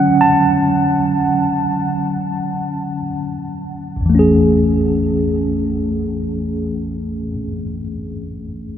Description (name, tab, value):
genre	pop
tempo	free time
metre	none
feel	none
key	A major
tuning	A4 = 443 Hz
part	tine electric piano	accompaniment	0.0-8.8 s	A1 to A5	-15 LUFS	equal	medium stereo tremolo
room	wet huge ambient reverb, RT60 8.2 s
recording	dreamy mix soaked in reverb, faint mains hum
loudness	-15 LUFS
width	side -9 dB against mid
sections	0.0-4.1 A section; 4.1-8.3 B section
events	slowing down 0.0-4.1; tine electric piano solo 0.0-4.1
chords	0.0 Dmaj7; 4.1 Amaj7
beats	free time